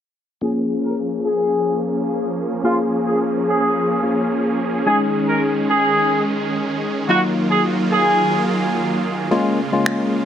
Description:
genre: dance-pop.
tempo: 108 BPM.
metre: 4/4.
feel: straight.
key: Db major.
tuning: A4 = 440 Hz.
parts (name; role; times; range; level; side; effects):
clear horn section; melody; 0.4-8.4 s; F4 to Bb4; -20 LUFS; equal; low-pass filter, tape echo.
tine electric piano; accompaniment; 0.4-10.2 s; Gb3 to Ab4; -20 LUFS; left 2 dB; low-pass filter.
supersaw chords; sustained chords; 0.4-10.2 s; Db3 to Ab4; -23 LUFS; right 3 dB; low-pass filter.
electronic finger snaps; drums; 9.9-10.0 s; none; -22 LUFS; right 1 dB; none.
room: light reverb.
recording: none.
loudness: -16 LUFS.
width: side -9 dB against mid.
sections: 0.4-9.3 A section.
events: filter sweep 0.4-9.3.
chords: 0.4 Db6; 4.9 Absus4; 7.1 Ebmadd9; 9.3 Db6.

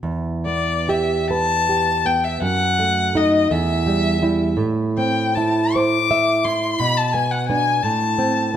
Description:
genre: romantic duo for violin and classical guitar.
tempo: 44-59 BPM (dotted quarters).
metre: 6/8.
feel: rubato.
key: E minor.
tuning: A4 = 440 Hz.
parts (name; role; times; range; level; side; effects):
nylon-string guitar; accompaniment; 0.0-8.6 s; E2 to E5; -20 LUFS; right 2 dB; none.
rich violin; melody; 0.5-8.6 s; D5 to D6; -20 LUFS; left 4 dB; none.
room: moderate recital hall reverb, RT60 1.6 s.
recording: none.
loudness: -17 LUFS.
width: side -10 dB against mid.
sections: 0.0-8.6 A section.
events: none.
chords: 0.0 Em; 2.4 D#dim/F#; 3.5 Em; 4.6 Am; 6.8 Bm6; 7.8 Am.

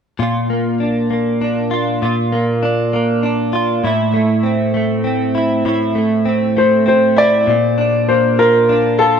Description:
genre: six-eight pop ballad.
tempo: 66 BPM (dotted quarters).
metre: 6/8.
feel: straight.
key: unclear.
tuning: A4 = 440 Hz.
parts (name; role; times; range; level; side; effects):
direct-recorded clean electric guitar; accompaniment; 0.2-9.2 s; A2 to F4; -15 LUFS; right 1 dB; double-tracked left and right.
bright concert grand piano; melody; 6.6-9.2 s; A4 to D5; -12 LUFS; left 2 dB; ping-pong delay.
room: moderate plate reverb, RT60 2.9 s.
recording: dark, warm production.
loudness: -13 LUFS.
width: side -7 dB against mid.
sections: 0.2-7.5 A section; 7.5-9.2 B section.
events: none.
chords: 0.2 Bb; 3.8 Am; 7.5 Bb.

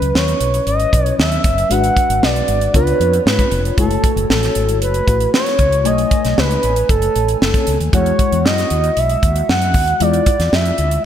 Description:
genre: polished 1980s jazz-funk pop.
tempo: 116 BPM.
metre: 4/4.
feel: straight.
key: C# minor.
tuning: A4 = 441 Hz.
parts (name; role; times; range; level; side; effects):
expressive synth lead; melody; 0.0-11.1 s; A4 to F#5; -17 LUFS; right 1 dB; chorus, digital delay.
FM electric piano with soft pad layer; accompaniment; 0.0-11.1 s; F#3 to G#5; -22 LUFS; left 5 dB; lush chorus.
mellow fretless electric bass; bass; 0.0-11.0 s; E#1 to G#2; -18 LUFS; equal; none.
tight funk drum kit; drums; 0.0-11.0 s; hi-hat, kick drum, snare drum; -18 LUFS; right 1 dB; gated reverb.
room: moderate lush hall reverb, RT60 2.1 s.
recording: bright 1980s-style digital production.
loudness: -13 LUFS.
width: side -10 dB against mid.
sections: 0.0-11.1 A section.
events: none.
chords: 0.0 C#m11; 1.7 G#m7b5; 2.7 C#7b9; 3.8 F#m7; 5.9 B13; 7.9 Emaj9; 10.0 E7b9.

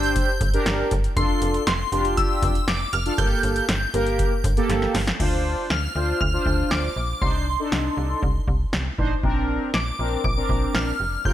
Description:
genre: synth-pop.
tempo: 119 BPM.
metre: 4/4.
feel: straight.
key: G dorian.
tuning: A4 = 440 Hz.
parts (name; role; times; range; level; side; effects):
shimmering bell with halo; melody; 0.0-11.3 s; C6 to G6; -27 LUFS; equal; ensemble chorus, phaser, slapback echo.
analog synth brass; accompaniment; 0.0-11.3 s; Bb3 to C5; -26 LUFS; equal; chorus.
slap-like FM bass; bass; 0.0-11.3 s; F1 to D2; -26 LUFS; equal; none.
electro analog drum machine; drums; 0.0-11.3 s; crash cymbal, hi-hat, kick drum, snare drum; -25 LUFS; equal; none.
room: light reverb.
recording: none.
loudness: -20 LUFS.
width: side -12 dB against mid.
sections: 0.0-5.2 A section; 5.2-11.3 B section.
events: drum fill 4.7-5.2.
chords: 0.0 Gm; 1.2 F6; 3.2 Gmadd9; 5.2 Dm7; 7.2 Cmadd9; 9.2 Bbadd9.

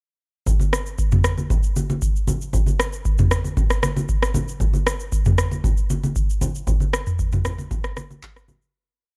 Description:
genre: amapiano.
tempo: 116 BPM.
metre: 4/4.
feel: straight.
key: none.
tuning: none.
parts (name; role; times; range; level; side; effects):
booming analog drum machine; drums; 0.5-8.7 s; handclaps, kick drum, rim click, shaker, toms; -22 LUFS; equal; overdrive.
congas; percussion; 0.5-8.6 s; none; -28 LUFS; equal; none.
room: digital ambience.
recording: dry, gritty hardware recording, cassette tape.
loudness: -21 LUFS.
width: mono.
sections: 0.5-8.7 groove.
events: fade-out 6.7-8.7.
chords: none.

